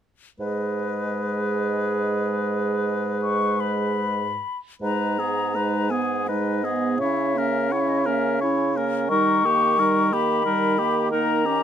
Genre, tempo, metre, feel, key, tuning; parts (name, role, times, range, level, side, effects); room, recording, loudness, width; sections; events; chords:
classical, slow romantic movement for wind quintet; 46-61 BPM (dotted quarters); 6/8; rubato; G# minor; A4 = 440 Hz
hollow concert flute; melody; 0.4-11.6 s; D#5 to C#6; -26 LUFS; left 5 dB
warm oboe; second line; 0.4-11.6 s; G4 to C#5; -28 LUFS; left 4 dB
clear clarinet; accompaniment; 0.4-11.6 s; B3 to G#4; -28 LUFS; right 8 dB
warm French horn; accompaniment; 0.4-11.6 s; G3 to C#4; -29 LUFS; equal
warm bassoon; bass; 0.4-11.6 s; G#2 to D#3; -27 LUFS; right 2 dB
light reverb; close, detailed microphones; -21 LUFS; side -9 dB against mid
0.4-4.8 A section; 4.8-11.6 B section
0.4 G#m; 7.0 A#dim/C#; 9.1 D#; 11.1 D#7